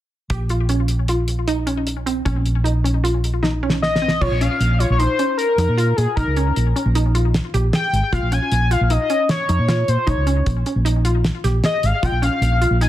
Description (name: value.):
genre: progressive instrumental, band music in an uneven meter.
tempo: 154 BPM.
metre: 5/4.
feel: straight.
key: Bb dorian.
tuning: A4 = 440 Hz.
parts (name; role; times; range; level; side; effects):
resonant blip pluck; arpeggios; 0.3-12.9 s; C4 to Ab4; -24 LUFS; right 2 dB; chorus, plate reverb, ping-pong delay.
hollow-body short-scale fingered electric bass; bass; 0.3-12.9 s; Ab1 to Bb2; -19 LUFS; equal; none.
cloth-damped thuddy drum kit; drums; 0.3-12.9 s; crash cymbal, hi-hat, kick drum, snare drum; -24 LUFS; equal; none.
octave-doubled lead; melody; 3.8-12.9 s; Ab4 to Ab5; -21 LUFS; left 3 dB; chorus, plate reverb, ping-pong delay.
room: moderate studio reverb, RT60 0.6 s.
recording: dense, heavily limited modern master.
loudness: -16 LUFS.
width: side -13 dB against mid.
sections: 0.3-4.2 A section; 4.2-12.9 B section.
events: drum fill 3.4-4.2.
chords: 0.3 Bbm; 4.2 Bbm7.